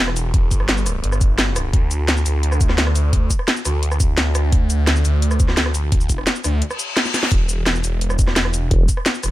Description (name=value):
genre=dark technical drum and bass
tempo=172 BPM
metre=4/4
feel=straight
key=E phrygian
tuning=A4 = 440 Hz
part: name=phased detuned saw bass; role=bass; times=0.0-9.3 s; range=E1 to D2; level=-19 LUFS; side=equal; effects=phaser, overdrive, sidechain pumping
part: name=drum and bass drum kit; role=drums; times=0.1-9.3 s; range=hi-hat, rim click, shaker, snare drum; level=-20 LUFS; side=equal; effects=none
part: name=electronic kick drum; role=drums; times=0.3-9.0 s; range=none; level=-17 LUFS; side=equal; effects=overdrive
part: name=reverse cymbal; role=sound effects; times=6.7-7.3 s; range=none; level=-25 LUFS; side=left 4 dB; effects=none
part: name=vowel-sweep wobble bass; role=bass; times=8.7-8.9 s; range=E1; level=-16 LUFS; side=equal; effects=chorus
room=little or no reverb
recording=none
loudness=-16 LUFS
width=side -16 dB against mid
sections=0.0-9.3 A section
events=reverse cymbal 6.7-7.3; drum fill 7.1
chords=0.0 Em; 1.7 N.C.